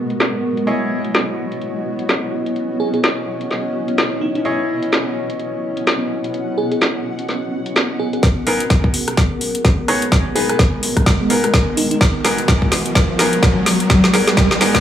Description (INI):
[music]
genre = bass house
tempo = 127 BPM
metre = 4/4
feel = swing 59% on 16ths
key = G# minor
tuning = A4 = 440 Hz
[part]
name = dark analog pad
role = sustained chords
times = 0.0-14.8 s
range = B3 to D#5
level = -24 LUFS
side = left 2 dB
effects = chorus, sidechain pumping
[part]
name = bright grand piano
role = stabs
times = 0.0-14.7 s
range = B3 to D#5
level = -22 LUFS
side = equal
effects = sidechain pumping, digital delay
[part]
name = granular cloud pad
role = texture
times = 0.0-14.8 s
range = G#3 to F#5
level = -24 LUFS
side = right 1 dB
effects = built-in reverb, sidechain pumping
[part]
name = garage drum kit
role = drums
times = 0.1-14.8 s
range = hi-hat, rim click, snare drum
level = -19 LUFS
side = equal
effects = high-pass filter on hats, low-pass filter on hats, high-pass filter on snare, low-pass filter on snare
[part]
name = bell-like FM electric piano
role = melody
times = 2.8-14.3 s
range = D#4 to G#4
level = -24 LUFS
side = right 1 dB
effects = chorus, tremolo, digital delay
[part]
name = electronic kick drum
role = drums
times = 8.2-14.8 s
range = none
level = -15 LUFS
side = equal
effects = none
[part]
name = riser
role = sound effects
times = 11.6-14.8 s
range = none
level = -20 LUFS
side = equal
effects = none
[sound]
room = light reverb, digital ambience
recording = none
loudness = -15 LUFS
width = side -10 dB against mid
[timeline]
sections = 0.0-8.2 A section; 8.2-14.8 B section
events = build-up 8.2-14.8; drum fill 8.2-14.8; riser 11.6-14.8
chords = 0.0 G#madd9; 0.7 C#madd9; 8.2 G#madd9